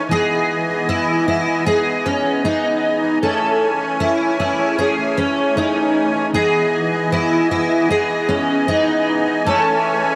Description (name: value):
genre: dream pop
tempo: 77 BPM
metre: 4/4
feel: straight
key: A lydian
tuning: A4 = 442 Hz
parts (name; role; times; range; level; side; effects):
- musette accordion; sustained chords; 0.0-10.2 s; E3 to G#5; -23 LUFS; equal; none
- fingerpicked twelve-string acoustic guitar; arpeggios; 0.0-10.2 s; C#4 to A4; -20 LUFS; equal; ensemble chorus, tape echo
- electric guitar at the edge of break-up; accompaniment; 0.1-10.2 s; E3 to G#4; -27 LUFS; equal; harmonic tremolo, lush chorus
room: light reverb, studio reverb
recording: dry, gritty hardware recording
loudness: -18 LUFS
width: mono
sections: 0.0-10.2 A section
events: none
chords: 0.1 Emaj7; 3.2 Amaj7; 6.3 Emaj7; 9.5 Amaj7